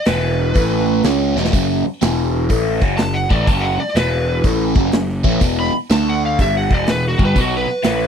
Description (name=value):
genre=blues rock power trio and southern rock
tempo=124 BPM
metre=4/4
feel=swing 66% on 8ths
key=unclear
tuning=A4 = 443 Hz
part: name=overdriven slide guitar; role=melody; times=0.0-8.1 s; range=F#4 to B5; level=-21 LUFS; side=equal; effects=none
part: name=overdriven electric guitar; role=riff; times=0.1-8.1 s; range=E2 to D4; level=-19 LUFS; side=equal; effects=phaser
part: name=fuzz picked electric bass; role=bass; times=0.1-8.1 s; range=E1 to D2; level=-21 LUFS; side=equal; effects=overdrive
part: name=big rock drum kit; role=drums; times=0.1-8.0 s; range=hi-hat, kick drum, snare drum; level=-17 LUFS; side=equal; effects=none
room=little or no reverb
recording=dry, close 1970s-style studio recording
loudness=-14 LUFS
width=side -7 dB against mid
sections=0.0-8.1 A section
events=electric slide guitar solo 0.0-8.1; drum fill 1.3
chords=0.1 E5; 0.6 A5; 1.0 F#5; 2.0 E5; 2.5 F#5; 4.0 E5; 4.4 F#5; 5.4 E5; 5.9 D5; 6.4 E5; 7.4 B5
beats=0.07 0.56 1.04 | 1.53 2.02 2.50 2.99 | 3.48 3.96 4.45 4.93 | 5.42 5.91 6.39 6.88 | 7.36 7.85